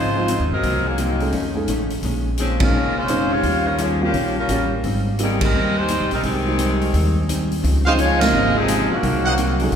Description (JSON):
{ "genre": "jazz, big band swing", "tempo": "171 BPM", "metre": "4/4", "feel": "swing 64% on 8ths", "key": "Ab major", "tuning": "A4 = 440 Hz", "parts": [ { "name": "clear saxophone section", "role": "melody", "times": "0.0-9.8 s", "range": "Eb3 to Db5", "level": "-22 LUFS", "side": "equal", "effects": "none" }, { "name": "vintage hollow-body jazz guitar", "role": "accompaniment", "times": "0.0-9.8 s", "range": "F2 to F4", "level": "-25 LUFS", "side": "left 2 dB", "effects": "none" }, { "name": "upright bass", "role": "bass", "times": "0.0-9.8 s", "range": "F1 to G2", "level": "-23 LUFS", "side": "equal", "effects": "none" }, { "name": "dark baby grand piano", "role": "accompaniment", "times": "0.2-9.8 s", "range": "F3 to Ab4", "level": "-26 LUFS", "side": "equal", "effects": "none" }, { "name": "swinging big-band drum kit", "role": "drums", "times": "0.3-9.8 s", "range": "hi-hat, kick drum, ride cymbal, snare drum", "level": "-27 LUFS", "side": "equal", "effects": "none" }, { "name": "bright trombone section", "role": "second line", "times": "6.2-9.8 s", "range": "Bb2 to Db4", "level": "-25 LUFS", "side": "right 2 dB", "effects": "none" }, { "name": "clear trumpet section", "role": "stabs", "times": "7.9-9.3 s", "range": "Bb4 to Gb5", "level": "-26 LUFS", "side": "right 2 dB", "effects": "none" } ], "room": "wet church reverb, RT60 4.0 s", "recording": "recorded in a church or concert hall", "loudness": "-17 LUFS", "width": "side -8 dB against mid", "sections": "0.0-7.6 A section; 7.6-9.8 B section", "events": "band accent 2.6, 5.4, 8.2", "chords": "0.0 Dbmaj9; 0.6 Cm7b5; 1.3 F7alt; 2.0 Bbm11; 3.4 Eb9; 4.8 Abmaj7; 7.6 Dbmaj9; 9.0 Cm7b5" }